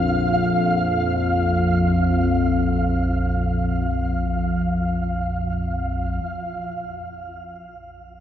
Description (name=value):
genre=dark ambient drone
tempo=free time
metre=none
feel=none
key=unclear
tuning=A4 = 441 Hz
part: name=analog drone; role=drone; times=0.0-8.2 s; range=Bb1 to F2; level=-21 LUFS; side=left 1 dB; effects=chorus
part: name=flickering grainy texture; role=texture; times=0.0-6.3 s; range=F5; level=-26 LUFS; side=right 1 dB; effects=built-in reverb, shimmer reverb
room=wet cathedral reverb, RT60 5.2 s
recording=none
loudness=-19 LUFS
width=side -10 dB against mid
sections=0.0-6.3 A section; 6.3-8.2 B section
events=none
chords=0.0 Bb5